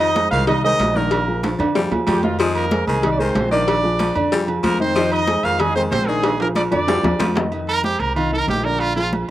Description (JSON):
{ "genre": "latin, salsa", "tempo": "188 BPM", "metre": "4/4", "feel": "straight", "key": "unclear", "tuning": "A4 = 443 Hz", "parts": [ { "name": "brilliant horn section", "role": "melody", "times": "0.0-7.3 s", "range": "F3 to F5", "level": "-21 LUFS", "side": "right 1 dB", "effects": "slapback echo" }, { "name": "raspy baritone saxophone", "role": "second line", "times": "0.0-7.4 s", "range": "Eb3 to G3", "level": "-24 LUFS", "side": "left 4 dB", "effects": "slapback echo" }, { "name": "dark upright piano", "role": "accompaniment", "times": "0.0-9.2 s", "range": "D3 to Eb5", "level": "-23 LUFS", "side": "equal", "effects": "slapback echo" }, { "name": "upright bass", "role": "bass", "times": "0.0-9.2 s", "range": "Bb1 to F2", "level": "-25 LUFS", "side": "equal", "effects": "none" }, { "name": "agogo bells and timbales", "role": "percussion", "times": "0.0-9.3 s", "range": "none", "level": "-26 LUFS", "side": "right 5 dB", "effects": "none" }, { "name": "congas", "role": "percussion", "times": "0.0-9.3 s", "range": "none", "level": "-26 LUFS", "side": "equal", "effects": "none" }, { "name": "cowbell and bongos", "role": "percussion", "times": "0.2-7.4 s", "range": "none", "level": "-24 LUFS", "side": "left 4 dB", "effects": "none" }, { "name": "brilliant trumpet", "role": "melody", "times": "7.7-9.1 s", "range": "F4 to Bb4", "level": "-21 LUFS", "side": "right 3 dB", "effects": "slapback echo" } ], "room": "little or no reverb", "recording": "recorded outdoors, with no room sound", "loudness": "-16 LUFS", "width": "side -14 dB against mid", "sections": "0.0-7.5 A section; 7.5-9.3 B section", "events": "drum fill 1.4-2.4, 6.2-7.5; trumpet solo 7.5-9.3", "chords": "0.0 Fm7; 1.1 Bb7; 2.4 Fm7; 3.7 Bb7; 5.0 Fm7; 6.2 Bb7; 7.5 Fm7" }